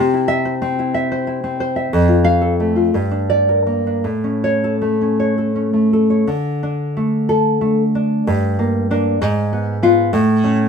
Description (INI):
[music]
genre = romantic piece for solo classical guitar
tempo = 52-66 BPM (dotted quarters)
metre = 6/8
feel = rubato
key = D minor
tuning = A4 = 438 Hz
[part]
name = nylon-string guitar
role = solo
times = 0.0-10.7 s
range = F2 to F5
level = -15 LUFS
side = equal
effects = none
[sound]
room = moderate studio ambience, RT60 0.5 s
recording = minimal, uncompressed stereo recording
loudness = -15 LUFS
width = side -6 dB against mid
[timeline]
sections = 0.0-6.3 A section; 6.3-10.7 B section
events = none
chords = 0.0 C; 1.9 F; 3.0 Gm; 4.1 A; 6.3 D5; 8.3 Gm; 9.2 G#m6; 10.1 A